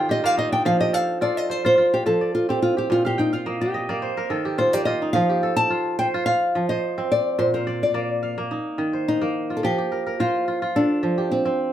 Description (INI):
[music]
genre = west african traditional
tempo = 107 BPM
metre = 4/4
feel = swing 53% on 16ths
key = F mixolydian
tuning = A4 = 441 Hz
[part]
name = nylon-string guitar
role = melody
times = 0.0-11.7 s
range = C4 to A5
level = -21 LUFS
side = left 1 dB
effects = none
[part]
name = kora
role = arpeggios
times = 0.0-11.7 s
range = Bb2 to G5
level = -24 LUFS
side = right 2 dB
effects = none
[sound]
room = moderate studio reverb, RT60 0.6 s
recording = band playing live in one room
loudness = -20 LUFS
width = side -11 dB against mid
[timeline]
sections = 0.0-9.6 A section; 9.6-11.7 B section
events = kora fill 0.0-0.7, 3.0-5.1; nylon-string guitar solo 0.0-9.6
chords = 0.0 Eb5; 0.7 F; 2.9 Ebmaj9/Bb; 4.0 Eb5; 5.1 F; 7.4 Bb; 8.5 Eb5; 9.6 F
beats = 0.09 | 0.65 1.21 1.77 2.33 | 2.89 3.46 4.02 4.58 | 5.14 5.70 6.26 6.82 | 7.38 7.94 8.51 9.07 | 9.63 10.19 10.75 11.31